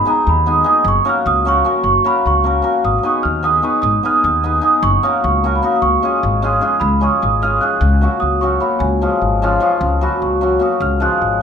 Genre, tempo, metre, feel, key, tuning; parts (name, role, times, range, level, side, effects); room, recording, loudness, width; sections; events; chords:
balkan folk, Balkan wedding band; 301 BPM (eighths); 5/8; straight; Db mixolydian; A4 = 441 Hz
large celesta; melody; 0.0-11.4 s; Ab5 to Gb6; -17 LUFS; right 4 dB
cimbalom; accompaniment; 0.0-11.4 s; F3 to Cb5; -16 LUFS; left 1 dB
upright bass; bass; 0.3-11.4 s; Gb1 to Eb2; -18 LUFS; left 1 dB
moderate recital hall reverb, RT60 1.5 s; minimal, uncompressed stereo recording; -13 LUFS; side -7 dB against mid
0.0-6.8 A section; 6.8-11.4 B section
celesta solo 6.8-11.4
0.0 Abm; 0.8 Gb; 2.8 Abm; 4.8 Gb; 5.8 Db; 7.8 Gb/Db; 8.8 Db; 9.8 Gb/Db; 10.8 Db